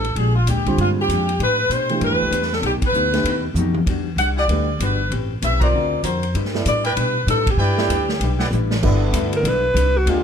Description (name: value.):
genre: jazz, big band swing.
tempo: 194 BPM.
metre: 4/4.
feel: swing 62% on 8ths.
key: G major.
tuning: A4 = 445 Hz.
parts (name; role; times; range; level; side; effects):
clear saxophone section; melody; 0.0-8.5 s; F4 to F#5; -21 LUFS; left 1 dB; none.
vintage hollow-body jazz guitar; accompaniment; 0.0-10.2 s; Bb2 to C5; -27 LUFS; left 6 dB; none.
upright bass; bass; 0.0-10.2 s; G1 to B2; -21 LUFS; equal; none.
swinging big-band drum kit; drums; 0.0-10.2 s; crash cymbal, hi-hat, kick drum, ride cymbal, snare drum, toms; -26 LUFS; equal; none.
warm grand piano; accompaniment; 0.7-9.7 s; D3 to D5; -25 LUFS; right 4 dB; none.
bright trumpet section; stabs; 4.4-8.5 s; E4 to Bb5; -27 LUFS; right 2 dB; none.
bright trombone section; sustained chords; 8.8-10.2 s; D3 to G4; -27 LUFS; left 2 dB; none.
breathy alto saxophone; melody; 9.4-10.2 s; F4 to B4; -18 LUFS; right 1 dB; none.
room: light reverb.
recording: none.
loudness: -17 LUFS.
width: side -7 dB against mid.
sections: 0.0-8.8 A section; 8.8-10.2 B section.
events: band accent 2.8, 5.6, 7.4; drum fill 3.6-3.9, 8.5-8.8; alto saxophone solo 8.8-10.2.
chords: 0.2 Bb13; 1.4 Am11; 2.6 B7alt; 3.9 Em9; 5.1 Am9; 5.7 D7alt; 6.3 G6.